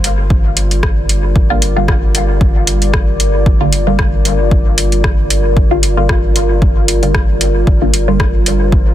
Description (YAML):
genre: dub techno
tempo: 114 BPM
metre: 4/4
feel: swing 55% on 16ths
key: G minor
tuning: A4 = 440 Hz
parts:
  - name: deep dark ambient pad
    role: sustained chords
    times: 0.0-8.9 s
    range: G3 to D5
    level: -19 LUFS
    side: left 1 dB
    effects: chorus, built-in reverb, sidechain pumping
  - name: pure sine sub bass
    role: bass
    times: 0.0-8.9 s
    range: G1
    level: -15 LUFS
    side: equal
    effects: sidechain pumping
  - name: soft vintage rhythm box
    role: drums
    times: 0.0-8.6 s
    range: hi-hat, rim click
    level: -19 LUFS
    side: equal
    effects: overdrive, dub echo
  - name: electronic kick drum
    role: drums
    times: 0.3-8.8 s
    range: none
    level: -14 LUFS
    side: equal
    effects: none
  - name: filtered dub chord stab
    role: stabs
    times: 1.5-8.2 s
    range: D3 to F4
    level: -20 LUFS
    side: equal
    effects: phaser, sidechain pumping, dub echo
room: little or no reverb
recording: dense, heavily limited modern master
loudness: -10 LUFS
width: side -12 dB against mid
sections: 0.0-8.9 A section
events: none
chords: 0.0 Gm7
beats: 0.30 0.83 | 1.36 1.88 2.41 2.94 | 3.46 3.99 4.51 5.04 | 5.57 6.09 6.62 7.15 | 7.67 8.20 8.72